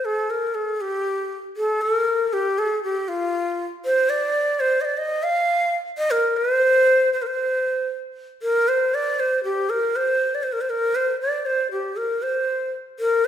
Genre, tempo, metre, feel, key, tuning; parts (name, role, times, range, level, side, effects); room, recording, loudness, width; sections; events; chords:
turkish; free time; A4 = 436 Hz
breathy bright ney; solo; 0.0-13.3 s; F4 to F5; -20 LUFS; equal
moderate scoring stage reverb, RT60 1.7 s; minimal, uncompressed stereo recording; -20 LUFS; side -9 dB against mid
0.0-13.3 A section